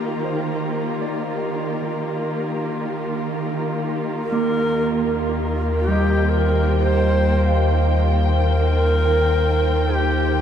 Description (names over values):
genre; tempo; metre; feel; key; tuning
ambient; 58 BPM; 4/4; straight; Eb major; A4 = 440 Hz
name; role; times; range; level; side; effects
muted studio string section; sustained chords; 0.0-10.4 s; Eb3 to G5; -24 LUFS; equal; shimmer reverb
overtone-sweeping drone; drone; 0.0-10.4 s; Eb3; -29 LUFS; right 2 dB; chorus, built-in reverb
bright studio violin section; texture; 0.0-4.3 s; Eb4 to Bb5; -46 LUFS; left 1 dB; none
mellow electric guitar; arpeggios; 0.2-10.4 s; G3 to F5; -26 LUFS; right 3 dB; spring reverb, shimmer reverb, tape echo
bright reedy long shakuhachi; melody; 4.2-10.4 s; G4 to C5; -22 LUFS; equal; shimmer reverb, tape echo
warm sub bass; bass; 4.3-10.4 s; Eb2; -20 LUFS; left 1 dB; none
room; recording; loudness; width
wet huge ambient reverb, RT60 8.5 s; dark, warm production; -18 LUFS; side -9 dB against mid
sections
0.0-4.2 A section; 4.2-10.4 B section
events
none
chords
0.0 Eb69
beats
| 0.10 1.13 2.17 3.20 | 4.24 5.27 6.30 7.34 | 8.37 9.41